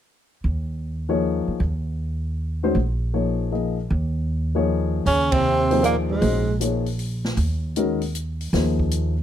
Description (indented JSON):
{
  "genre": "modal jazz",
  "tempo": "156 BPM",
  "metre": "3/4",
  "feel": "swing 66% on 8ths",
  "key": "Eb dorian",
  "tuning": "A4 = 443 Hz",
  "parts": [
    { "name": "upright bass", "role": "bass", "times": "0.4-9.2 s", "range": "Bb1 to Eb2", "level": "-24 LUFS", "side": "right 1 dB", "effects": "none" },
    { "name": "dark baby grand piano", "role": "accompaniment", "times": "1.1-9.1 s", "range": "Eb3 to Eb5", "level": "-24 LUFS", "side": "left 4 dB", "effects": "none" },
    { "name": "warm tenor saxophone", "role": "melody", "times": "5.1-6.6 s", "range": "Ab3 to Db4", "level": "-21 LUFS", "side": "right 1 dB", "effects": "none" },
    { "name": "breathy tenor saxophone", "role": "second line", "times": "5.1-6.6 s", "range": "Ab2 to Db3", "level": "-25 LUFS", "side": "right 7 dB", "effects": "none" },
    { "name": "open jazz drum kit", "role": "drums", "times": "5.1-9.0 s", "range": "hi-hat, kick drum, ride cymbal, snare drum", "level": "-30 LUFS", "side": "equal", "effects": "none" }
  ],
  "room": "light reverb",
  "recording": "none",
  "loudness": "-20 LUFS",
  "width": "side -10 dB against mid",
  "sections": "0.4-5.1 A section; 5.1-9.2 B section",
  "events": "band accent 5.3",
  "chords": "0.4 Eb9sus4"
}